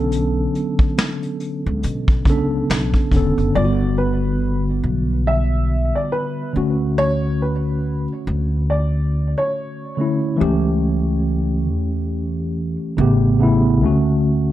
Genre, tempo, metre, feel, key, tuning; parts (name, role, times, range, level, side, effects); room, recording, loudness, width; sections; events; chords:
lo-fi hip hop; 70 BPM; 4/4; swing 58% on 16ths; A4 = 439 Hz
mellow tine electric piano; accompaniment; 0.0-14.5 s; C#3 to A4; -20 LUFS; equal; medium stereo tremolo, cassette tape, plate reverb
upright bass; bass; 0.0-14.5 s; E1 to B2; -21 LUFS; equal
vintage brush drum kit; drums; 0.1-3.5 s; hi-hat, kick drum, snare drum; -17 LUFS; equal; vintage 12-bit sampler grit
dark upright piano; melody; 3.6-10.4 s; B4 to E5; -24 LUFS; equal; tape echo
moderate studio reverb, RT60 0.6 s; dark, warm production; -17 LUFS; side -13 dB against mid
0.0-3.5 A section; 3.5-14.5 B section
0.0 Bm9; 3.5 Gmaj7; 6.5 Dmaj7; 10.4 A7/C#; 13.0 A9; 13.8 Dmaj7